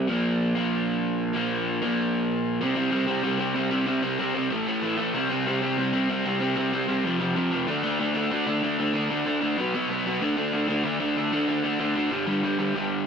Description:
punk; 189 BPM; 4/4; straight; A4 = 442 Hz
crunchy overdriven guitar; solo; 0.0-13.1 s; F2 to D4; -23 LUFS; equal
light reverb; -23 LUFS; side -6 dB against mid
0.0-2.6 A section; 2.6-12.8 B section
0.1 Bb5; 2.6 C5; 4.5 A5; 5.1 C5; 7.0 F5; 7.7 D5; 9.6 B5; 10.2 D5; 12.1 G5

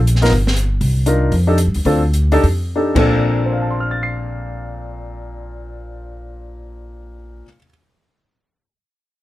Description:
jazz, small-group swing and bop; 168-241 BPM; 4/4; swing 60% on 8ths; Bb major; A4 = 441 Hz
upright bass; bass; 0.0-7.4 s; G1 to G2; -18 LUFS; equal
open jazz drum kit; drums; 0.1-3.0 s; crash cymbal, hi-hat, kick drum, snare drum; -23 LUFS; right 1 dB
warm baby grand piano; accompaniment; 0.2-7.7 s; Bb2 to C7; -19 LUFS; left 1 dB
little or no reverb; close, detailed microphones; -14 LUFS; side -16 dB against mid
0.8-3.1 A section; 3.1-5.9 B section
slowing down 0.8-3.1; drum fill 2.8-3.1
0.3 N.C.; 0.8 Cm11; 1.3 F13; 1.9 Dm7; 2.4 F13; 2.9 Bbmaj9

